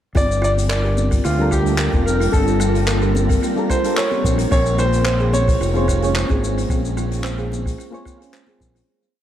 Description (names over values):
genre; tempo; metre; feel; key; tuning
sunset chillout; 110 BPM; 4/4; swing 53% on 16ths; G minor; A4 = 437 Hz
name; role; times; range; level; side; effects
ethereal airy pad; sustained chords; 1.1-8.8 s; G3 to G5; -26 LUFS; equal; ensemble chorus, built-in reverb
growling fingered electric bass; bass; 0.1-8.8 s; F1 to D2; -20 LUFS; equal; overdrive
electronic kick drum; drums; 0.1-8.7 s; none; -20 LUFS; equal; none
congas; percussion; 0.1-8.7 s; none; -29 LUFS; left 3 dB; tape echo
warm concert grand piano; melody; 0.2-8.3 s; F4 to D5; -23 LUFS; equal; analog delay
buzzing kalimba; arpeggios; 0.2-8.9 s; F4 to C5; -28 LUFS; right 3 dB; tape echo
vintage brush drum kit; drums; 0.2-8.9 s; handclaps, hi-hat, shaker; -28 LUFS; left 1 dB; none
wind-like tuned noise texture; texture; 1.1-8.9 s; Bb3 to Bb6; -32 LUFS; left 3 dB; built-in reverb
soft electric-piano-like synth keys; accompaniment; 1.4-8.9 s; G3 to Db5; -26 LUFS; moving between left 3 dB and right 4 dB; chorus, tremolo, auto-pan, tape echo
room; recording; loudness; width
light reverb, small room ambience; echo-heavy mix; -16 LUFS; side -11 dB against mid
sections
0.1-8.9 groove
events
fade-out 6.0-8.9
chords
0.1 Gm9; 4.2 Bbm9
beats
| 0.15 0.69 1.24 1.79 | 2.33 2.88 3.42 3.97 | 4.51 5.06 5.60 6.15 | 6.70 7.24 7.79 8.33